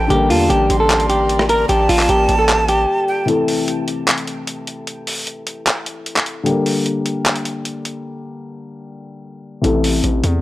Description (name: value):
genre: hip hop, trap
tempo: 151 BPM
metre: 4/4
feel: half-time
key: A phrygian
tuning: A4 = 440 Hz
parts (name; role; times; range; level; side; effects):
- semi-hollow electric guitar; melody; 0.0-3.2 s; F4 to Bb4; -17 LUFS; equal; tape echo
- breathy bright jazz flute; second line; 0.0-3.3 s; G5 to C6; -23 LUFS; right 3 dB; tape echo
- dark concert grand piano; accompaniment; 0.0-10.4 s; C3 to Bb4; -21 LUFS; left 3 dB; low-pass filter
- warm studio string section; sustained chords; 0.0-3.3 s; Bb3 to D5; -27 LUFS; left 1 dB; none
- distorted 808-style bass; bass; 0.0-2.9, 9.6-10.4 s; A1 to E2; -19 LUFS; equal; distortion
- boom bap sampler-style drum kit; drums; 0.1-10.3 s; handclaps, hi-hat, rim click; -20 LUFS; equal; none
room: little or no reverb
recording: dry, gritty hardware recording, transformer saturation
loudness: -15 LUFS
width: side -16 dB against mid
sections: 0.0-3.3 A section; 3.3-10.4 B section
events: break 2.9-3.3, 3.3-9.6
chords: 0.1 Gm/A; 3.3 Am; 6.5 Gm; 9.6 Am